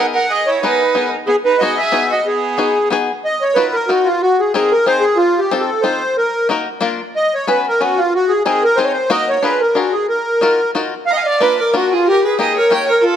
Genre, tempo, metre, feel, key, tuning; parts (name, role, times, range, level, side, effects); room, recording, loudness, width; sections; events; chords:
musette waltz; 184 BPM; 3/4; swing 55% on 8ths, rubato; G# minor, Eb minor from 3.3 s; A4 = 440 Hz
accordion; melody; 0.0-13.2 s; F4 to F#5; -14 LUFS; equal; light tremolo tuning
clear violin; second line; 0.0-2.9, 11.1-13.2 s; B3 to Bb5; -21 LUFS; right 4 dB
bluegrass banjo; accompaniment; 0.0-12.9 s; Bb3 to B4; -20 LUFS; left 5 dB
moderate recital hall reverb, RT60 1.7 s; -13 LUFS; side -9 dB against mid
0.0-3.3 A section; 3.3-13.2 B section
0.0 G#madd9; 1.3 G#m7; 3.3 Ebmadd9; 4.2 Abadd9; 5.2 F7; 6.2 Ebm/Bb; 6.8 Bb; 7.2 Bsus2; 8.1 Abadd9; 9.1 Ebm/Bb; 9.4 Bb7; 10.1 Ebmadd9; 11.1 Bb; 12.1 Eb